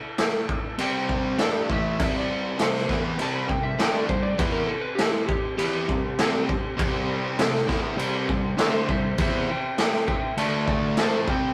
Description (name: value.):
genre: garage rock duo or trio.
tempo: 100 BPM.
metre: 4/4.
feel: straight.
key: unclear.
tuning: A4 = 440 Hz.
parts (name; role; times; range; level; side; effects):
overdriven combo organ; sustained chords; 0.0-11.5 s; C4 to G5; -39 LUFS; equal; none.
raw garage drum kit; drums; 0.2-11.4 s; crash cymbal, kick drum, snare drum; -27 LUFS; equal; none.
electric slide guitar; melody; 0.8-11.5 s; E4 to B5; -32 LUFS; equal; slapback echo.
fuzz guitar; riff; 0.8-11.5 s; A2 to A4; -29 LUFS; equal; distortion.
room: moderate stone room reverb, RT60 1.0 s.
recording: rough rehearsal-room recording.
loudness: -25 LUFS.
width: mono.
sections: 0.0-11.5 A section.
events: electric slide guitar solo 0.0-11.5.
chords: 0.0 A5; 0.8 C5; 1.4 A5; 2.0 C5; 10.4 D5; 11.0 C5.